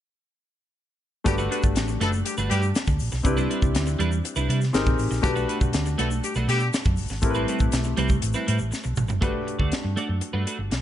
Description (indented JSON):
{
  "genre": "polished 1980s jazz-funk pop",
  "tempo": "121 BPM",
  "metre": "4/4",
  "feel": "straight",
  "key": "G major",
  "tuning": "A4 = 438 Hz",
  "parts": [
    { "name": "warm baby grand piano", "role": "accompaniment", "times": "1.2-10.8 s", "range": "A3 to B4", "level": "-29 LUFS", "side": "left 3 dB", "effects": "lush chorus" },
    { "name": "warm horn section", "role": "second line", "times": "1.3-6.7 s", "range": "G3 to B4", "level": "-30 LUFS", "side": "left 2 dB", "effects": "none" },
    { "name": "clean electric guitar", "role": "riff", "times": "1.3-10.8 s", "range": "G3 to D5", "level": "-30 LUFS", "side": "right 4 dB", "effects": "analog chorus" },
    { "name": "hollow-body short-scale fingered electric bass", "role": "bass", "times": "1.3-10.8 s", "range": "F#1 to C3", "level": "-26 LUFS", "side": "equal", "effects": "none" },
    { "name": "crisp fusion drum kit", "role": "drums", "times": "1.3-10.8 s", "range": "hi-hat, kick drum, snare drum, toms", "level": "-26 LUFS", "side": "equal", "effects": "none" },
    { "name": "egg shaker", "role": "percussion", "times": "1.3-9.2 s", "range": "none", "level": "-40 LUFS", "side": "left 7 dB", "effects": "none" }
  ],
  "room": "small room reverb",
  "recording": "nothing above 10.6 kHz",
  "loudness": "-22 LUFS",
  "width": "side -11 dB against mid",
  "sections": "1.3-9.2 A section; 9.2-10.8 B section",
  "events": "drum fill 8.7-9.2",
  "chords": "1.3 Gmaj9; 3.2 Cmaj9; 4.7 Abmaj9; 5.2 Gmaj9/B; 7.2 Am9; 9.2 Gmaj9"
}